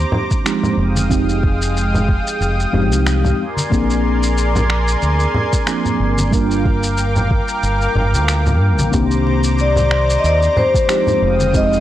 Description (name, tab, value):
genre	sunset chillout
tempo	92 BPM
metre	4/4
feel	swing 55% on 16ths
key	C minor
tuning	A4 = 440 Hz
part	mellow FM electric piano	accompaniment	0.0-11.8 s	Eb3 to Bb4	-21 LUFS	moving between left 5 dB and right 6 dB	chorus, phaser, auto-pan, analog delay
part	lush unison pad	sustained chords	0.0-11.8 s	Ab3 to Eb6	-22 LUFS	equal	chorus, vintage 12-bit sampler grit
part	deep dub fingered electric bass	bass	0.0-11.8 s	F1 to G2	-17 LUFS	equal	none
part	congas	percussion	0.1-11.5 s	none	-22 LUFS	equal	none
part	electronic kick drum	drums	0.3-11.7 s	none	-18 LUFS	equal	overdrive
part	electronic shaker and finger snaps	drums	0.3-11.8 s	none	-25 LUFS	equal	none
part	vibraphone with medium hard mallets	melody	9.6-11.8 s	C5 to Eb5	-16 LUFS	left 3 dB	none
room	light reverb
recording	dry, gritty hardware recording, cassette tape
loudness	-14 LUFS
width	side -13 dB against mid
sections	0.0-11.8 A section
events	none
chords	0.0 Cm9; 0.8 Fm9; 3.4 Bb9; 6.3 Gm7; 8.9 Cm9; 11.2 Fm9